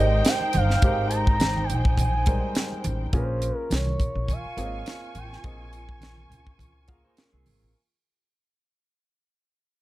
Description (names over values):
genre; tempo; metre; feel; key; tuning
lush 1970s-style soul; 104 BPM; 4/4; swing 54% on 16ths; unclear; A4 = 440 Hz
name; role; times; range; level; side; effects
expressive synth lead; melody; 0.0-7.1 s; C5 to Bb5; -29 LUFS; right 2 dB; chorus
dark studio string section; second line; 0.0-7.7 s; Eb4 to Db6; -33 LUFS; equal; none
warm grand piano; accompaniment; 0.0-7.8 s; G3 to F5; -33 LUFS; equal; none
upright bass; bass; 0.0-7.7 s; G1 to Db2; -26 LUFS; equal; none
tight funk drum kit; drums; 0.2-7.6 s; hi-hat, kick drum, snare drum; -24 LUFS; equal; none
tambourine; percussion; 0.3-7.3 s; none; -44 LUFS; left 5 dB; none
congas; percussion; 0.4-7.6 s; none; -33 LUFS; right 2 dB; none
electric guitar through a small old amp; riff; 7.0-7.7 s; C4 to C5; -73 LUFS; right 4 dB; none
room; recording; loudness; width
small room ambience; none; -22 LUFS; side -16 dB against mid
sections
0.0-7.8 A section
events
fade-out 0.0-7.8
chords
0.0 Abmaj7; 3.1 Bbm7